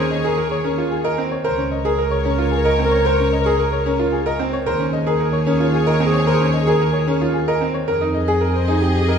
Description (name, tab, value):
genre	classical, minimalist pattern music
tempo	112 BPM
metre	3/4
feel	straight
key	unclear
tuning	A4 = 440 Hz
part	mellow clarinet	second line	0.0-9.2 s	Ab4 to Bb4	-25 LUFS	right 1 dB	none
part	bright symphonic string section	sustained chords	0.0-9.2 s	Ab4 to Eb5	-29 LUFS	left 3 dB	none
part	clear grand piano	arpeggios	0.0-9.2 s	C4 to Bb4	-21 LUFS	right 4 dB	none
part	warm double bass	bass	0.0-9.2 s	Db2 to F2	-21 LUFS	equal	none
part	clear grand piano	melody	0.1-9.2 s	G4 to Eb5	-23 LUFS	left 7 dB	none
room	wet recital hall reverb, RT60 1.4 s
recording	heard from further back in the room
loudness	-16 LUFS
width	side -7 dB against mid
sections	0.0-9.2 A section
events	none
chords	0.0 Eb7sus4; 1.4 Dbsus2; 4.7 Eb7sus4; 7.9 Fm9